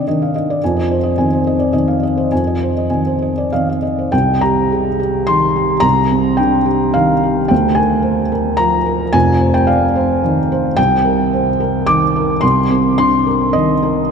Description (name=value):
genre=neoclassical minimalist piano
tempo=97-111 BPM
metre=3/4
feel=rubato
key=C minor from 4.1 s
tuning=A4 = 440 Hz
part: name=felt-muted upright piano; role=solo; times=0.0-14.1 s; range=F1 to D6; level=-12 LUFS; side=equal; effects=none
room=wet cathedral reverb, RT60 6.2 s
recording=in a vast, echoing space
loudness=-12 LUFS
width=side -6 dB against mid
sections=0.0-4.1 A section; 4.1-14.1 B section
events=none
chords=0.0 Cmadd9; 0.6 Fm7; 4.1 Cm7; 7.5 Bbadd9/D; 9.1 F5; 10.8 Cm7